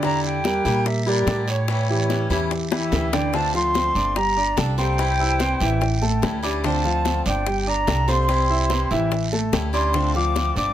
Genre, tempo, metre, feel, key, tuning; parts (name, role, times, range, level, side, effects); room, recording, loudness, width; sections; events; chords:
latin, Cuban son and guajira; 145 BPM; 4/4; straight; D minor; A4 = 440 Hz
silver concert flute; melody; 0.0-10.7 s; C#5 to D6; -24 LUFS; equal
picked swing-style acoustic guitar; accompaniment; 0.0-10.7 s; C3 to A4; -28 LUFS; left 5 dB
warm concert grand piano; arpeggios; 0.0-10.7 s; D3 to E6; -25 LUFS; right 1 dB
upright bass; bass; 0.0-10.7 s; G1 to Bb2; -24 LUFS; right 1 dB
bongos; percussion; 0.0-10.7 s; -26 LUFS; left 5 dB
guiro; percussion; 0.0-10.7 s; -33 LUFS; right 5 dB
light reverb; close, detailed microphones; -19 LUFS; side -11 dB against mid
0.0-3.3 A section; 3.3-10.7 B section
drum fill 2.7-3.3
0.0 Em7b5; 1.7 A7; 3.3 Dm7; 4.2 Gmadd9; 5.0 C; 5.8 A7; 6.6 Dm7; 7.5 Gmadd9; 8.3 C; 9.1 A7; 9.9 Dm7